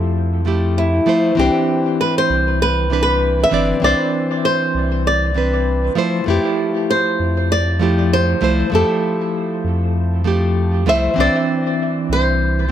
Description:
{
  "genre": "sunset chillout",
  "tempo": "98 BPM",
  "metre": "4/4",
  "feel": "swing 57% on 16ths",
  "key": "C major",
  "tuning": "A4 = 439 Hz",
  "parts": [
    { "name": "flamenco guitar", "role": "melody", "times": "0.0-12.7 s", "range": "E4 to E5", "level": "-19 LUFS", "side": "equal", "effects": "dub echo" },
    { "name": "nylon-string guitar", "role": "accompaniment", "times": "0.0-12.7 s", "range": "E3 to D5", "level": "-19 LUFS", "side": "equal", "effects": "auto-pan, dub echo" },
    { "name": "warm sub bass", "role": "bass", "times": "0.0-12.7 s", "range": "G1 to F2", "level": "-19 LUFS", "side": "equal", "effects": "none" }
  ],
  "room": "moderate spring reverb, RT60 1.6 s, small room ambience",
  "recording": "echo-heavy mix",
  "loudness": "-15 LUFS",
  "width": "side -10 dB against mid",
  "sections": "0.0-11.2 A section; 11.2-12.7 B section",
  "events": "none",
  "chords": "0.0 Fmaj9; 1.4 Cmaj9; 6.0 Fmaj9; 11.2 Cadd9",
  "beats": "0.15 0.77 | 1.38 1.99 2.60 3.21 | 3.83 4.44 5.05 5.66 | 6.28 6.89 7.50 8.11 | 8.72 9.34 9.95 10.56 | 11.17 11.79 12.40"
}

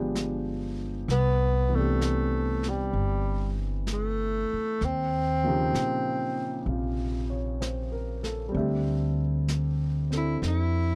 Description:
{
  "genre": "jazz ballad",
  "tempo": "64 BPM",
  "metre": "4/4",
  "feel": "swing 69% on 8ths",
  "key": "unclear",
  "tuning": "A4 = 439 Hz",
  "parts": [
    { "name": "warm concert grand piano", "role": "accompaniment", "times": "0.0-10.9 s", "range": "B#2 to E5", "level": "-35 LUFS", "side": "equal", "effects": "none" },
    { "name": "upright bass", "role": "bass", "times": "0.0-10.9 s", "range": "G1 to A#2", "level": "-30 LUFS", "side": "equal", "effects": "none" },
    { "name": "vintage brush drum kit", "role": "drums", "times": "0.2-10.9 s", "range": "brushed snare drum, hi-hat, snare drum", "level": "-41 LUFS", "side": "equal", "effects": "none" },
    { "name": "warm tenor saxophone", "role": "melody", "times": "1.1-10.9 s", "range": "G3 to E4", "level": "-31 LUFS", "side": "equal", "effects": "none" }
  ],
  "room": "little or no reverb",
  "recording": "dry, close 1970s-style studio recording",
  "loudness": "-28 LUFS",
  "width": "mono",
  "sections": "0.0-10.9 A section",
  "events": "none",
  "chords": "0.0 G7b9; 1.1 Cmaj9; 4.8 D#13; 8.5 Dm11",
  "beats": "0.15 | 1.08 2.01 2.94 3.87 | 4.80 5.74 6.67 7.61 | 8.54 9.48 10.41"
}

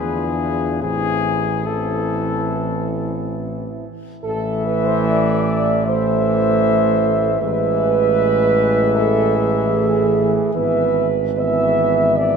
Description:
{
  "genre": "classical, hymn-like piece for brass band",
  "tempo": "68-78 BPM",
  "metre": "4/4",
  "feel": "rubato",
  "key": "A minor",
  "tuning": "A4 = 439 Hz",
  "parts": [
    { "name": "mellow cornet", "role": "melody", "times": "0.0-12.4 s", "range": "G#4 to E5", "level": "-23 LUFS", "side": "left 9 dB", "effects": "none" },
    { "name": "mellow French horn section", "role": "second line", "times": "0.0-12.4 s", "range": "E4 to E5", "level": "-20 LUFS", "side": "right 5 dB", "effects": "none" },
    { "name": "clear trombone", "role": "accompaniment", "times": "0.0-12.4 s", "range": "E3", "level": "-25 LUFS", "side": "right 3 dB", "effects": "none" },
    { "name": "warm euphonium", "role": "accompaniment", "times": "0.0-12.4 s", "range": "G#3 to D4", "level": "-24 LUFS", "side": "left 2 dB", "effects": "none" },
    { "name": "warm tuba", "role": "bass", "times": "0.0-12.4 s", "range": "G#1 to E2", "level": "-23 LUFS", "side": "right 1 dB", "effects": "none" }
  ],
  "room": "wet cathedral reverb, RT60 4.4 s",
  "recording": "none",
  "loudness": "-16 LUFS",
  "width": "side -6 dB against mid",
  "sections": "0.0-4.2 A section; 4.2-12.4 A section",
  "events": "none",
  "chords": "0.0 E7b9; 0.8 Am; 7.4 E/A; 10.6 E/G#",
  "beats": "| 0.83 1.68 2.52 3.38 | 4.25 5.07 5.86 6.63 | 7.41 8.20 8.98 9.76 | 10.55 11.39 12.19"
}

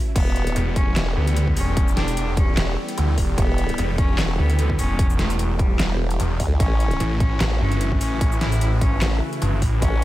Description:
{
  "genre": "heavy wobble dubstep",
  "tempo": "149 BPM",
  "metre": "4/4",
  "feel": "swing 55% on 16ths, half-time",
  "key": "E dorian",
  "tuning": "A4 = 440 Hz",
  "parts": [
    { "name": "supersaw chords", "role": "sustained chords", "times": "0.0-10.0 s", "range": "C#3 to G4", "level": "-31 LUFS", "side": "right 1 dB", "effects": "phaser, sidechain pumping" },
    { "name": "warbly tape-like pad", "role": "texture", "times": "0.0-10.0 s", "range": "C#4 to G5", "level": "-33 LUFS", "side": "right 2 dB", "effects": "chorus, built-in reverb, sidechain pumping" },
    { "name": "rich cello", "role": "melody", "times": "0.2-10.0 s", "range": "G3 to E4", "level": "-29 LUFS", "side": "left 2 dB", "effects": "tape echo" },
    { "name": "formant-sweep wobble bass", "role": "bass", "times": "0.2-10.0 s", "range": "E1 to D2", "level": "-22 LUFS", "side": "equal", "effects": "chorus, overdrive" },
    { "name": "dubstep drum kit", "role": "drums", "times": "0.2-9.9 s", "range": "crash cymbal, handclaps, hi-hat, shaker, snare drum", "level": "-27 LUFS", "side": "left 1 dB", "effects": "overdrive" },
    { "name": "electronic kick drum", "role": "drums", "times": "0.2-9.9 s", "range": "none", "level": "-21 LUFS", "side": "equal", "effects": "overdrive" },
    { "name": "snarling distorted saw bass", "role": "bass", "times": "0.6-9.8 s", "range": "E1 to D2", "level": "-22 LUFS", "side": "equal", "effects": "distortion, overdrive" }
  ],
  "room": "little or no reverb",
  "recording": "none",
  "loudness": "-18 LUFS",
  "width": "side -15 dB against mid",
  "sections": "0.0-10.0 A section",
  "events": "none",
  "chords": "0.2 Em; 6.6 A",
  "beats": "| 0.16 0.56 0.96 1.36 | 1.77 2.17 2.57 2.98 | 3.38 3.78 4.18 4.59 | 4.99 5.39 5.79 6.20 | 6.60 7.00 7.41 7.81 | 8.21 8.61 9.02 9.42 | 9.82"
}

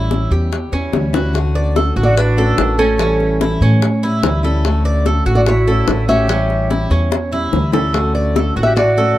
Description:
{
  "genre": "latin, Cuban son and guajira",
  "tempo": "146 BPM",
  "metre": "4/4",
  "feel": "straight",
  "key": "D major",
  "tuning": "A4 = 439 Hz",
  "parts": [
    { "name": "nylon-string guitar", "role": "melody", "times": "0.0-9.2 s", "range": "A4 to E5", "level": "-18 LUFS", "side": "equal", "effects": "none" },
    { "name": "picked steel-string acoustic guitar", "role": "accompaniment", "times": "0.0-9.2 s", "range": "D3 to F#4", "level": "-22 LUFS", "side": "left 2 dB", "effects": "none" },
    { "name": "Cuban tres", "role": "arpeggios", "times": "0.0-9.2 s", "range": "C#4 to D5", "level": "-21 LUFS", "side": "right 2 dB", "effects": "none" },
    { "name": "upright bass", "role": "bass", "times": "0.0-9.1 s", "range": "A1 to A2", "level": "-16 LUFS", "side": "equal", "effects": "none" },
    { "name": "bongos", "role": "percussion", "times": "0.1-9.0 s", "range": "none", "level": "-20 LUFS", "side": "left 4 dB", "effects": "none" },
    { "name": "breathy bright jazz flute", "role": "second line", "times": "2.0-9.2 s", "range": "C#4 to G4", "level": "-24 LUFS", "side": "right 4 dB", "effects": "none" }
  ],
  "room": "light reverb",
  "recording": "dark, warm production",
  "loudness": "-13 LUFS",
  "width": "side -14 dB against mid",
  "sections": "0.0-1.3 A section; 1.3-9.2 B section",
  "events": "drum fill 0.9-1.3, 7.1-7.9",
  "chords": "0.0 A7; 1.3 Dmaj7; 3.0 A7; 4.6 Dmaj9; 6.3 A7; 7.9 Dmaj7",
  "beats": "0.11 0.52 0.94 | 1.35 1.76 2.17 2.58 | 3.00 3.41 3.82 4.23 | 4.64 5.06 5.47 5.88 | 6.29 6.71 7.12 7.53 | 7.94 8.35 8.77 9.18"
}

